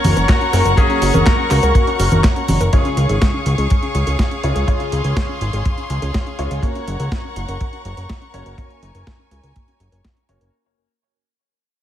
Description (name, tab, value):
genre	italo disco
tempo	123 BPM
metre	4/4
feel	straight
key	unclear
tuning	A4 = 440 Hz
part	lightly driven lead guitar	melody	0.0-2.2 s	Db4 to Db5	-21 LUFS	left 1 dB	diffuse ambient delay
part	clear studio string section	sustained chords	0.0-10.5 s	Ab4 to Db6	-23 LUFS	left 2 dB	none
part	warbly dusty pluck	arpeggios	0.0-10.5 s	Ab3 to Bb4	-27 LUFS	equal	chorus, ping-pong delay
part	warm baby grand piano	stabs	0.0-10.5 s	Db3 to Db5	-27 LUFS	left 2 dB	low-pass filter, ping-pong delay
part	fat analog bass	bass	0.0-10.5 s	Gb1 to Db2	-19 LUFS	equal	none
part	clean 12-bit digital drum machine	drums	0.0-10.5 s	cabasa, congas, handclaps, hi-hat, snare drum	-22 LUFS	right 1 dB	small room ambience
part	kick drum	drums	0.3-10.1 s	none	-17 LUFS	equal	small room ambience
room	moderate plate reverb, RT60 1.1 s, small room ambience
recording	dreamy mix soaked in reverb, vinyl crackle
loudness	-15 LUFS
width	side -11 dB against mid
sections	0.0-2.7 A section; 2.7-10.5 B section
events	fade-out 2.7-10.5; filter sweep on synth arpeggio sound 2.7-10.5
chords	0.0 Gb; 2.7 Db; 6.6 Gb